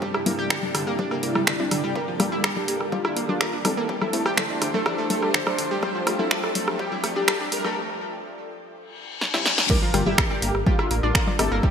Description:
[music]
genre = melodic techno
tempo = 124 BPM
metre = 4/4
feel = straight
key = G dorian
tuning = A4 = 445 Hz
[part]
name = wide unison lead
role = melody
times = 0.0-11.6 s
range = D4 to C5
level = -29 LUFS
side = equal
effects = ensemble chorus, sidechain pumping, ping-pong delay
[part]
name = lush unison pad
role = sustained chords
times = 0.0-11.7 s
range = C3 to C5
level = -34 LUFS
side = right 1 dB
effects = chorus, sidechain pumping
[part]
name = analog pluck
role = arpeggios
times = 0.0-11.7 s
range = D3 to Bb5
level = -29 LUFS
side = equal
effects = chorus, sidechain pumping, ping-pong delay
[part]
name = filtered dub chord stab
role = stabs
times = 0.0-11.7 s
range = G3 to F4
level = -31 LUFS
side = left 3 dB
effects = chorus, sidechain pumping, ping-pong delay
[part]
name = bowed-like drone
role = drone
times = 0.0-11.7 s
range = G2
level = -41 LUFS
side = right 2 dB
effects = none
[part]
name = electronic kick drum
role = drums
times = 0.0-11.7 s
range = none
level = -25 LUFS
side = equal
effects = high-pass filter on kick
[part]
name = riser, reverse cymbal and impact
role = sound effects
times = 0.1-11.6 s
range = none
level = -34 LUFS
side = left 2 dB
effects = none
[part]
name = granular cloud pad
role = texture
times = 0.0-11.7 s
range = C3 to G5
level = -35 LUFS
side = left 1 dB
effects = built-in reverb, wide subtle chorus, sidechain pumping
[part]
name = punchy analog drum machine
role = drums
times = 0.1-11.5 s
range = congas, crash cymbal, finger snaps, hi-hat, rim click, snare drum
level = -24 LUFS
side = equal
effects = gated reverb
[part]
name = dark detuned saw bass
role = bass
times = 9.9-11.6 s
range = G1 to A1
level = -26 LUFS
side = equal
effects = sidechain pumping
[sound]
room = moderate lush hall reverb, RT60 2.2 s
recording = bright 1980s-style digital production, high-pass filter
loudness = -21 LUFS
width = side -7 dB against mid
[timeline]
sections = 0.0-9.7 A section; 9.7-11.7 B section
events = build-up 0.0-9.7; filter sweep on analog synth lead 0.0-9.7; filter sweep on synth stab 0.0-9.7; filter sweep 0.0-9.7; riser 0.1-7.8; break 7.8-9.7; reverse cymbal 9.0-9.7; drum fill 9.2-9.7; drop 9.7-11.7; impact 9.7-11.6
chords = 0.0 C; 2.0 Gm7; 3.9 Am; 5.8 Fadd9; 7.8 C; 9.7 Gm7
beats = | 0.02 0.50 0.99 1.47 | 1.96 2.44 2.92 3.41 | 3.89 4.38 4.86 5.34 | 5.83 6.31 6.79 7.28 | 7.76 8.25 8.73 9.21 | 9.70 10.18 10.66 11.15 | 11.63

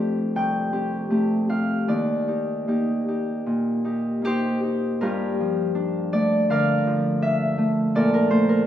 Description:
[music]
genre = classical, solo harp piece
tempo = 71-84 BPM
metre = 4/4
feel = rubato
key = G minor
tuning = A4 = 441 Hz
[part]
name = Celtic harp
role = solo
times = 0.0-8.7 s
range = C2 to A5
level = -20 LUFS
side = equal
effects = none
[sound]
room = wet recital hall reverb, RT60 1.7 s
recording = heard from further back in the room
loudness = -20 LUFS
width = side -11 dB against mid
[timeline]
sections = 0.0-5.0 A section; 5.0-8.7 B section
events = none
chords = 0.0 F69; 1.9 Ebmaj7; 5.0 Gm9; 7.9 Bbmaj7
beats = 0.35 1.11 | 1.87 2.68 3.47 4.23 | 5.01 5.75 6.49 7.22 | 7.95

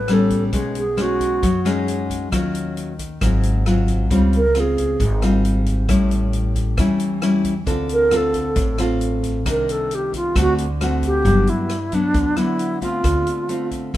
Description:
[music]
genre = bossa nova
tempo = 134 BPM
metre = 4/4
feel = straight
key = unclear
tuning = A4 = 440 Hz
[part]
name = alto flute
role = melody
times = 0.0-1.7, 4.4-5.2, 7.9-13.7 s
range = D4 to B4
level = -20 LUFS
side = right 1 dB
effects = none
[part]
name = nylon-string guitar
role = accompaniment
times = 0.0-14.0 s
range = G2 to A4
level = -20 LUFS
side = left 2 dB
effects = none
[part]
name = upright bass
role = bass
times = 0.0-14.0 s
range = G1 to F#2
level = -22 LUFS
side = equal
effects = none
[part]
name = vintage drum kit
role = drums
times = 0.1-14.0 s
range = hi-hat, kick drum, rim click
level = -27 LUFS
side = equal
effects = none
[sound]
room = little or no reverb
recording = minimal, uncompressed stereo recording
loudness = -17 LUFS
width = side -14 dB against mid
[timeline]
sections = 0.0-11.3 A section; 11.3-14.0 B section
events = alto flute solo 0.0-11.3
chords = 0.0 A9; 0.5 B69; 2.3 Ebm9; 3.2 Ab6; 4.1 Dbmaj7#11; 5.9 A7; 7.7 Dm7; 9.5 Cm9; 10.4 D7; 11.3 Gmaj7; 13.0 Dm7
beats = 0.09 | 0.53 0.98 1.43 1.87 | 2.32 2.77 3.21 3.66 | 4.11 4.55 5.00 5.45 | 5.89 6.34 6.79 7.24 | 7.68 8.13 8.57 9.02 | 9.47 9.92 10.36 10.81 | 11.26 11.71 12.15 12.60 | 13.05 13.50 13.95

